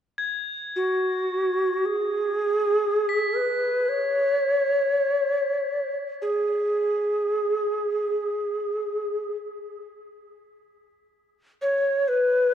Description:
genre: world meditative, free-time meditation music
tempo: free time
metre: none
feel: none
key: G# minor pentatonic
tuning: A4 = 440 Hz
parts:
  - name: crotales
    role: texture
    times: 0.2-11.0 s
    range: G#6 to B6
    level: -33 LUFS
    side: left 2 dB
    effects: none
  - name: breathy mellow Native American-style cedar flute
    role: melody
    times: 0.8-12.5 s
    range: F#4 to C#5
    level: -22 LUFS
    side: equal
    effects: diffuse ambient delay
room: wet concert hall reverb, RT60 1.8 s, studio reverb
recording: none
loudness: -22 LUFS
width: side -9 dB against mid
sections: 0.0-12.5 A section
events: none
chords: none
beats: free time

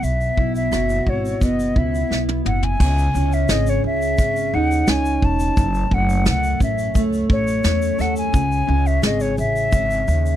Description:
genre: acoustic pop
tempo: 87 BPM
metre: 4/4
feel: straight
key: unclear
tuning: A4 = 440 Hz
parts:
  - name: hollow concert flute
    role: melody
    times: 0.0-10.4 s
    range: C#5 to A5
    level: -23 LUFS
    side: left 2 dB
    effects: none
  - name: fingerpicked plugged-in steel-string acoustic guitar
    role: accompaniment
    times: 0.0-10.4 s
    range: F#2 to A4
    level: -23 LUFS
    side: right 1 dB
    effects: double-tracked left and right
  - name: upright bass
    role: bass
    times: 0.0-10.4 s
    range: E1 to E2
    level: -21 LUFS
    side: equal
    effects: none
  - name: soft brush drum kit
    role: drums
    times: 0.0-10.4 s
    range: crash cymbal, kick drum, rim click, shaker, snare drum, toms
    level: -21 LUFS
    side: equal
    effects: none
room: little or no reverb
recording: dry, close 1970s-style studio recording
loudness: -17 LUFS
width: side -12 dB against mid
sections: 0.0-2.8 A section; 2.8-10.4 B section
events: drum fill 2.1-2.8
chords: 0.0 Bsus4; 2.8 C#madd9; 5.6 F#m; 8.3 C#madd9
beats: | 0.03 0.72 1.41 2.11 | 2.80 3.49 4.19 4.88 | 5.57 6.26 6.96 7.65 | 8.34 9.04 9.73

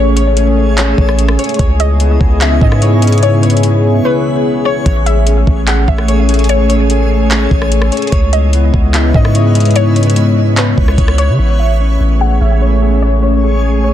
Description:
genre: hip hop, atmospheric cloud-rap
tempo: 147 BPM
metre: 4/4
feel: half-time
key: A lydian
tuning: A4 = 442 Hz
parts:
  - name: warbly dusty pluck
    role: melody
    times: 0.0-13.9 s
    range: B4 to F#5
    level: -20 LUFS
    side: left 2 dB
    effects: chorus, phaser, low-pass filter, tape echo
  - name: dark analog pad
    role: sustained chords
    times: 0.0-13.9 s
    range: C#3 to D#5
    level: -15 LUFS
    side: left 1 dB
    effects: chorus, sidechain pumping, low-pass filter
  - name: Celtic harp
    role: arpeggios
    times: 0.0-13.9 s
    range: B3 to C#5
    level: -21 LUFS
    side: left 5 dB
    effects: low-pass filter, tape echo
  - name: long sustained 808-style bass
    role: bass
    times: 0.0-13.9 s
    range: A1 to C#3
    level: -12 LUFS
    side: equal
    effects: none
  - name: backwards swelling texture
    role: texture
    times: 0.0-13.9 s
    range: A3 to C#5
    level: -24 LUFS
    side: right 2 dB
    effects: built-in reverb
  - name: smooth R&B drum kit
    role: drums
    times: 0.2-11.3 s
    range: handclaps, hi-hat, kick drum, rim click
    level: -14 LUFS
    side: equal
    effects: vintage 12-bit sampler grit
room: digital ambience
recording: dense, heavily limited modern master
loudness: -9 LUFS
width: side -11 dB against mid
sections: 0.0-11.4 A section; 11.4-13.9 B section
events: break 4.0-4.9; filter sweep 11.4-13.9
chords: 0.0 Amaj7; 1.6 C#m7; 4.9 Amaj7; 8.1 C#m7; 11.4 Amaj7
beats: 0.37 0.78 1.19 | 1.59 2.00 2.41 2.82 | 3.23 3.63 4.04 4.45 | 4.86 5.27 5.68 6.08 | 6.49 6.90 7.31 7.72 | 8.12 8.53 8.94 9.35 | 9.76 10.17 10.57 10.98 | 11.39 11.80 12.21 12.62 | 13.02 13.43 13.84

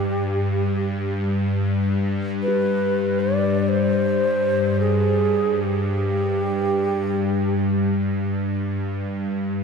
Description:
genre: world meditative, free-time meditation music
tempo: free time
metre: none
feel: none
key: G major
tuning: A4 = 442 Hz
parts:
  - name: low xiao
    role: melody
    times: 0.0-7.7 s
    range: G4 to D5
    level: -24 LUFS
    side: right 2 dB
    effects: tape echo
  - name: bowed-like drone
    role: drone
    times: 0.0-9.6 s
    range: G2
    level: -22 LUFS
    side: left 2 dB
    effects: built-in reverb
  - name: bronze singing bowl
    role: texture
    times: 2.5-9.6 s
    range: G4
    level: -32 LUFS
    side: left 7 dB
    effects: none
room: wet cathedral reverb, RT60 4.7 s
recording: dark, warm production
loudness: -19 LUFS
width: side -5 dB against mid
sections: 0.0-9.4 A section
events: none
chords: none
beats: free time

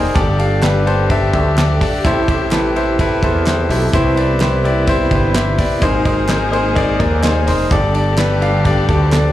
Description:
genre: piano-driven pop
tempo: 127 BPM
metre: 4/4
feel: straight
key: unclear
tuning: A4 = 440 Hz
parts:
  - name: bright grand piano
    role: accompaniment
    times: 0.0-9.3 s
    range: G2 to C6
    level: -16 LUFS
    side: left 1 dB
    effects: slapback echo
  - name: warm studio string section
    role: sustained chords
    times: 0.0-9.3 s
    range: C3 to Ab4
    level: -24 LUFS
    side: equal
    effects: none
  - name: fretless electric bass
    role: bass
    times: 0.0-9.3 s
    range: F1 to E2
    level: -17 LUFS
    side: equal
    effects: lush chorus
  - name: damped 70s drum kit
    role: drums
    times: 0.2-9.2 s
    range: handclaps, hi-hat, kick drum, ride cymbal, snare drum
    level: -20 LUFS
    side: right 1 dB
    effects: none
  - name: group handclap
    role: percussion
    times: 0.6-9.2 s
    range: none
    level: -32 LUFS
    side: right 4 dB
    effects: none
room: light reverb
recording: live gig heard through the venue's PA, club reverb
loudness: -12 LUFS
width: side -13 dB against mid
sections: 0.0-9.3 A section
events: grand piano fill 0.0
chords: 0.2 Gsus2; 2.0 Am7; 3.9 Cmaj7; 5.8 Abadd9; 7.7 Gsus2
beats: | 0.15 0.63 1.10 1.57 | 2.04 2.52 2.99 3.46 | 3.93 4.40 4.88 5.35 | 5.82 6.29 6.76 7.24 | 7.71 8.18 8.65 9.12

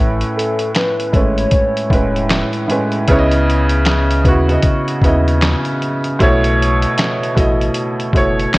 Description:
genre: lo-fi hip hop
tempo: 77 BPM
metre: 4/4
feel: swing 61% on 16ths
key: unclear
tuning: A4 = 440 Hz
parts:
  - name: felt-muted upright piano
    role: accompaniment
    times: 0.0-8.6 s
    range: A2 to D#5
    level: -16 LUFS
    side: right 1 dB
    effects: low-pass filter
  - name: warm sub bass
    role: bass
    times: 0.0-8.6 s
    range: E1 to D#2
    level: -17 LUFS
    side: equal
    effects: none
  - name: lo-fi sampler-style drum kit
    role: drums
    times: 0.2-8.6 s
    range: handclaps, hi-hat, kick drum, snare drum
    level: -17 LUFS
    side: equal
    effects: vintage 12-bit sampler grit
  - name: warbly nostalgic lead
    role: melody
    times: 0.4-2.5 s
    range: A4 to C#5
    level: -20 LUFS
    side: left 1 dB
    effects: chorus, low-pass filter
room: light reverb, digital ambience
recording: worn, warbling old tape, cassette tape, warbly pitch drift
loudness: -12 LUFS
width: side -21 dB against mid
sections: 0.0-8.6 A section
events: none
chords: 0.0 Amaj9; 3.1 C#m9; 6.2 B9sus4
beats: 0.74 1.52 2.30 | 3.08 3.86 4.64 5.42 | 6.20 6.98 7.76 8.54

